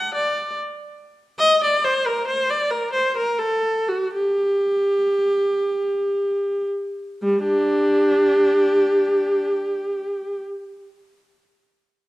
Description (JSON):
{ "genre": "classical, baroque-style suite movement for unaccompanied viola", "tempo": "55-73 BPM", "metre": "3/4", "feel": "rubato", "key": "G minor", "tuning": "A4 = 444 Hz", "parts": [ { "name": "clear viola", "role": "solo", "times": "0.0-10.4 s", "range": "G3 to F#5", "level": "-18 LUFS", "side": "equal", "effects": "none" } ], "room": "wet recital hall reverb, RT60 1.5 s", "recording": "dark, warm production", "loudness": "-18 LUFS", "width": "side -17 dB against mid", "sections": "0.0-7.2 A section; 7.2-10.4 B section", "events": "slowing down 0.2-7.2", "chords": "none", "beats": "0.57 | 1.40 2.26 3.16 | 4.11 5.12 6.15 | 7.22 8.27 9.32" }